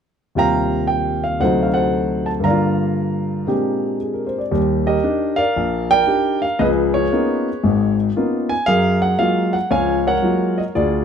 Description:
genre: solo jazz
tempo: 116 BPM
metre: 4/4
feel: swing 66% on 8ths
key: Eb major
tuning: A4 = 440 Hz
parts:
  - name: warm grand piano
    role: solo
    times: 0.4-11.0 s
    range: Ab1 to Bb5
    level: -16 LUFS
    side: equal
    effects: none
room: moderate studio reverb, RT60 1.0 s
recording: dark, warm production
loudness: -16 LUFS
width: side -7 dB against mid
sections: 0.4-4.5 A section; 4.5-11.0 B section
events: none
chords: 0.4 Eb69; 1.4 D7b9; 2.4 Gm7; 3.5 Bb13; 4.5 Ebmaj7; 6.6 Db13; 8.7 Gbmaj9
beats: | 0.36 0.88 1.40 1.92 | 2.44 2.96 3.48 4.00 | 4.51 5.03 5.55 6.07 | 6.59 7.11 7.63 8.15 | 8.67 9.19 9.71 10.23 | 10.74

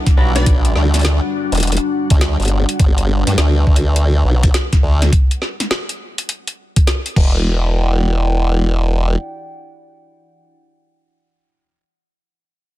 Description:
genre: glitch hop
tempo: 103 BPM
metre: 4/4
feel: swing 63% on 16ths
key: E minor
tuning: A4 = 438 Hz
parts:
  - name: dark analog pad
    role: sustained chords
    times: 0.0-10.5 s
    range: G3 to G5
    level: -27 LUFS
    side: right 2 dB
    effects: chorus, vintage 12-bit sampler grit, sidechain pumping
  - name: ethereal airy pad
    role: texture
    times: 0.0-2.8 s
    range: G3 to F#5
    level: -25 LUFS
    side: left 3 dB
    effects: ensemble chorus, built-in reverb, phaser, sidechain pumping
  - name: drum and bass drum kit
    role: drums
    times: 0.1-7.3 s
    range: crash cymbal, hi-hat, snare drum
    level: -22 LUFS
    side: left 1 dB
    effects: none
  - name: electronic kick drum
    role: drums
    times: 0.1-7.3 s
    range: none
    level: -13 LUFS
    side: equal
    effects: none
  - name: semi-hollow electric guitar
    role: stabs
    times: 0.2-0.8 s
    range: D4 to B4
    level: -28 LUFS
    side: right 1 dB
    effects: sidechain pumping, dub echo
  - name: formant-sweep wobble bass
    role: bass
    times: 0.2-9.2 s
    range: E1 to G2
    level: -14 LUFS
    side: equal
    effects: chorus
  - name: plucky unison lead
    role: melody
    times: 0.4-0.5 s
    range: D5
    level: -30 LUFS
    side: left 2 dB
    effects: dub echo
room: digital ambience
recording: dense, heavily limited modern master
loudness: -13 LUFS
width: side -15 dB against mid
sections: 0.0-7.5 A section; 7.5-9.8 B section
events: drop 0.0-7.5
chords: 0.0 Em9; 2.8 Gmaj7; 7.2 Em9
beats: | 0.47 1.05 1.63 2.21 | 2.80 3.38 3.96 4.54 | 5.13 5.71 6.29 6.87 | 7.46 8.04 8.62 9.20

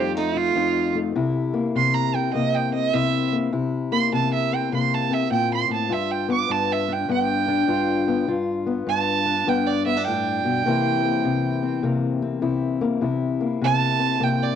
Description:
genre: acoustic country blues, solo or duo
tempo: 101 BPM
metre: 4/4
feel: swing 64% on 8ths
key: C mixolydian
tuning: A4 = 439 Hz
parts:
  - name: rich fiddle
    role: melody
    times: 0.0-14.6 s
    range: Eb4 to D6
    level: -23 LUFS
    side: right 10 dB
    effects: cassette tape
  - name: fingerpicked steel-string acoustic guitar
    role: accompaniment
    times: 0.0-14.6 s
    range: F2 to F4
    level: -22 LUFS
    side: left 4 dB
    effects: cassette tape
room: moderate studio reverb, RT60 0.6 s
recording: home recording on cassette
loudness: -20 LUFS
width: side -8 dB against mid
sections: 0.0-14.6 A section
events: fiddle solo 0.0-14.6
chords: 0.0 F7; 1.1 C7; 5.9 G7; 10.6 C7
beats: 0.56 | 1.15 1.74 2.34 2.93 | 3.52 4.12 4.71 5.31 | 5.90 6.50 7.09 7.68 | 8.28 8.87 9.46 10.06 | 10.65 11.24 11.84 12.43 | 13.02 13.61 14.21

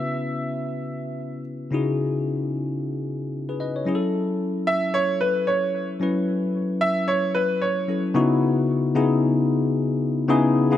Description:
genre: amapiano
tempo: 112 BPM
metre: 4/4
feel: swing 58% on 16ths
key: C# minor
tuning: A4 = 440 Hz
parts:
  - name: clear grand piano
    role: melody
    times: 0.0-1.4, 4.7-8.0 s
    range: B4 to E5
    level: -24 LUFS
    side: right 1 dB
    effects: tape echo
  - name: bell-like tine electric piano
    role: accompaniment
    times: 0.0-10.8 s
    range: C#3 to D#5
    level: -22 LUFS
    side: left 2 dB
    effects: analog chorus
room: light reverb, small room ambience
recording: none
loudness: -21 LUFS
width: side -11 dB against mid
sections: 0.0-8.2 A section; 8.2-10.8 B section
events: none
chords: 0.0 C#m11; 3.9 F#m7; 8.2 C#m11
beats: 0.12 0.65 1.19 | 1.72 2.26 2.79 3.33 | 3.87 4.40 4.94 5.47 | 6.01 6.54 7.08 7.62 | 8.15 8.69 9.22 9.76 | 10.29

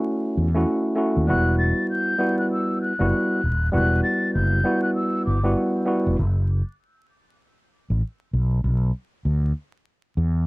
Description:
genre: hip hop, boom-bap hip-hop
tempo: 98 BPM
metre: 4/4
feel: swing 59% on 16ths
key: E dorian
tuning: A4 = 440 Hz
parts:
  - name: mellow tine electric piano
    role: accompaniment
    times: 0.0-6.2 s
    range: G3 to F#4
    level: -22 LUFS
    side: equal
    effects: high-pass filter, low-pass filter
  - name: fretless electric bass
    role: bass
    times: 0.4-10.4 s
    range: D#1 to E2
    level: -20 LUFS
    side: equal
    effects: transformer saturation
  - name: mellow hollow concert flute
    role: melody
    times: 1.3-5.5 s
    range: D6 to A6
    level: -26 LUFS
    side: left 1 dB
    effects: high-pass filter, low-pass filter
room: little or no reverb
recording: dry, gritty hardware recording, vinyl crackle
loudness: -20 LUFS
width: side -23 dB against mid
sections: 0.0-10.5 A section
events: break 6.2-10.5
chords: 0.0 B7sus4 (rootless); 1.3 Emadd9; 6.2 N.C.; 8.3 Bsus4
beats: 0.06 0.68 | 1.29 1.90 2.51 3.12 | 3.74 4.35 4.96 5.57 | 6.18 6.80 7.41 8.02 | 8.63 9.25 9.86

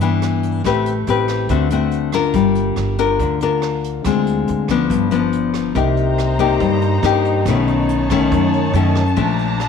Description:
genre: bossa nova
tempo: 141 BPM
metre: 4/4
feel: straight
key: unclear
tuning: A4 = 438 Hz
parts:
  - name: nylon-string guitar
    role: accompaniment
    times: 0.0-9.7 s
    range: F#2 to B4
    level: -16 LUFS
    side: left 7 dB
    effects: none
  - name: upright bass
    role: bass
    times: 0.0-9.7 s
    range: G1 to G2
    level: -21 LUFS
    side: right 3 dB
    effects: none
  - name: jazz brush drum kit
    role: drums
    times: 0.0-9.7 s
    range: hi-hat, kick drum, rim click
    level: -30 LUFS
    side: right 7 dB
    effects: none
  - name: warm studio string section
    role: sustained chords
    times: 5.7-9.7 s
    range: D4 to Bb5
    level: -24 LUFS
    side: right 2 dB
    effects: none
room: moderate echo chamber reverb, RT60 1.6 s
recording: 1960s-style stereo with parts hard left and right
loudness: -15 LUFS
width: side -6 dB against mid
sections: 0.0-5.8 A section; 5.8-9.7 B section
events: none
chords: 0.0 Cmaj9 (rootless); 0.6 Am9; 1.5 D7; 2.3 Gm7; 4.1 Dm7b5; 4.9 G7; 5.8 Cm7; 7.5 B9; 9.2 Bbmaj7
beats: 0.21 | 0.64 1.07 1.49 1.92 | 2.35 2.77 3.20 3.63 | 4.05 4.48 4.91 5.33 | 5.76 6.18 6.61 7.04 | 7.46 7.89 8.32 8.74 | 9.17 9.60

